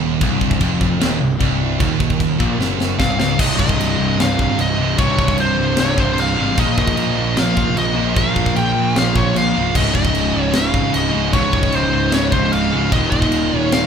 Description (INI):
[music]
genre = heavy metal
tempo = 151 BPM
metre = 4/4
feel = straight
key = C phrygian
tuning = A4 = 442 Hz
[part]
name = high-gain distorted guitar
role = riff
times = 0.0-13.9 s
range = C2 to Bb3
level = -21 LUFS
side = right 8 dB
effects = distortion
[part]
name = sludgy distorted guitar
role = riff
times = 0.0-13.9 s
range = C2 to Bb3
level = -22 LUFS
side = left 5 dB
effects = overdrive
[part]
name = fuzz picked electric bass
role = bass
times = 0.0-13.9 s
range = C1 to Bb1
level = -23 LUFS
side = equal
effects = overdrive
[part]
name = distorted electric guitar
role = riff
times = 0.2-13.9 s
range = C2 to Bb3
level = -27 LUFS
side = left 1 dB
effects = none
[part]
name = tight metal drum kit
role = drums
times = 0.2-13.8 s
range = china cymbal, crash cymbal, kick drum, snare drum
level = -20 LUFS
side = equal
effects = none
[part]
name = high-gain lead guitar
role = melody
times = 3.0-13.9 s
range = C5 to G5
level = -20 LUFS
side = left 1 dB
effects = distortion
[sound]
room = moderate large studio reverb, RT60 1.0 s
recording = band playing live in one room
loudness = -14 LUFS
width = side -7 dB against mid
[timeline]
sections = 0.0-3.4 A section; 3.4-13.9 B section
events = drum fill 2.6-3.4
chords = 0.0 Cm; 6.6 Bb5; 9.8 Db; 12.9 Eb5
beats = | 0.21 0.61 1.00 1.40 | 1.80 2.20 2.60 2.99 | 3.39 3.79 4.19 4.58 | 4.98 5.38 5.78 6.17 | 6.57 6.97 7.37 7.76 | 8.16 8.56 8.96 9.35 | 9.75 10.15 10.54 10.94 | 11.34 11.74 12.13 12.53 | 12.93 13.33 13.72